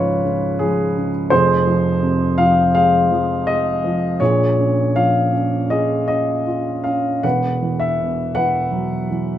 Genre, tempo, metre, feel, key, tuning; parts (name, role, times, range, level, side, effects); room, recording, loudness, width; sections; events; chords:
classical, lyrical solo piano; 77-87 BPM; 4/4; rubato; A4 = 440 Hz
dark baby grand piano; solo; 0.0-9.4 s; E1 to F#5; -16 LUFS; equal
moderate recital hall reverb, RT60 1.6 s; -16 LUFS; side -11 dB against mid
0.0-9.4 A section
0.0 C#; 1.3 Fm; 4.2 A#m7; 7.2 Esus2